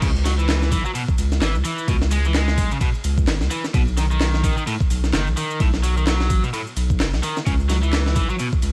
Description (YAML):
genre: breakbeat, breaks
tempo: 129 BPM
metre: 4/4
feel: swing 58% on 16ths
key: C# minor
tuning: A4 = 439 Hz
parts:
  - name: crunchy overdriven guitar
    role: riff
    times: 0.0-8.5 s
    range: A2 to G#3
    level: -28 LUFS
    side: equal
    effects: analog delay
  - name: saturated sub bass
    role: bass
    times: 0.0-8.7 s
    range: F#1 to C#2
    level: -23 LUFS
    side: equal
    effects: none
  - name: breakbeat sampler-style drum kit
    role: drums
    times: 0.0-8.7 s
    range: crash cymbal, kick drum, ride cymbal, snare drum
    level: -25 LUFS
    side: equal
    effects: small room ambience
  - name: garage drum kit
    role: drums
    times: 0.0-8.7 s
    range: handclaps, hi-hat, shaker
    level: -36 LUFS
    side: equal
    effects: small room ambience
room: digital ambience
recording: dry, gritty hardware recording, vinyl crackle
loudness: -20 LUFS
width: mono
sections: 0.0-8.7 A section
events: drop 0.0-8.7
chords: 0.0 C#m; 3.7 B; 7.5 C#m7